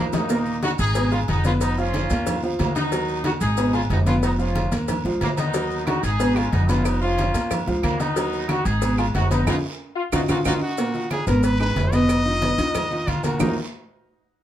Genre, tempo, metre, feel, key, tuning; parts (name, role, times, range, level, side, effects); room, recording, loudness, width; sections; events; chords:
latin, salsa; 183 BPM; 4/4; straight; Eb minor; A4 = 441 Hz
warm trumpet section; melody; 0.0-10.5 s; Gb3 to Ab4; -26 LUFS; equal
warm trombone section; second line; 0.0-0.3, 10.0-10.8 s; Eb4 to F4; -30 LUFS; left 4 dB
bright upright piano; accompaniment; 0.0-13.6 s; Bb2 to Cb6; -25 LUFS; equal
upright bass; bass; 0.0-13.6 s; F1 to F2; -24 LUFS; equal
congas; percussion; 0.1-13.5 s; -28 LUFS; left 1 dB
cowbell and bongos; percussion; 0.1-13.5 s; -32 LUFS; left 5 dB
guiro; percussion; 0.1-13.5 s; -40 LUFS; right 4 dB
maracas; percussion; 0.1-13.5 s; -39 LUFS; right 7 dB
timbales and agogo bells; percussion; 0.1-13.5 s; -32 LUFS; right 5 dB
claves; percussion; 5.9-13.5 s; -36 LUFS; right 6 dB
bright trumpet; melody; 10.5-13.6 s; Eb4 to Eb5; -26 LUFS; left 1 dB
wet studio reverb, RT60 0.5 s; heard from further back in the room; -19 LUFS; side -11 dB against mid
0.3-10.8 A section; 10.8-13.4 B section; 13.4-14.4 C section
drum fill 0.0, 9.5-10.8; band accent 9.5-10.8
0.3 Eb5; 1.0 Abm; 1.6 Bmaj9#11/E#; 2.3 Ebmadd9; 3.6 Abm; 4.2 Bmaj9#11/E#; 4.9 Ebmadd9; 6.2 Abm; 6.9 Bmaj9#11/E#; 7.5 Ebmadd9; 8.8 Abm; 9.5 Fm7; 10.1 Ebmadd9; 11.4 Abm; 12.1 B; 12.7 Ebsus2; 13.4 Ebmadd9